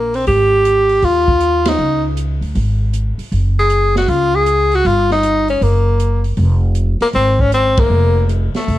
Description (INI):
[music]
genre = jazz, small-group swing and bop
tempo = 157 BPM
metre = 4/4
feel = swing 66% on 8ths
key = F minor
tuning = A4 = 440 Hz
[part]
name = clear tenor saxophone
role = melody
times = 0.0-8.8 s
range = A3 to Ab4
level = -14 LUFS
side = left 1 dB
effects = plate reverb
[part]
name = upright bass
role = bass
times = 0.0-8.8 s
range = F1 to Eb2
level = -16 LUFS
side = equal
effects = none
[part]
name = open jazz drum kit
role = drums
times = 0.1-8.8 s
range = hi-hat, kick drum, ride cymbal, snare drum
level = -21 LUFS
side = equal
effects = none
[sound]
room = light reverb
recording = dark, warm production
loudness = -12 LUFS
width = side -14 dB against mid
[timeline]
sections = 0.0-8.8 A section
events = band accent 1.6, 7.7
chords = 0.3 Ab5; 1.8 Db5; 3.3 Gbsus2; 4.8 Ebadd9/G; 5.6 Gb; 6.4 Fmadd11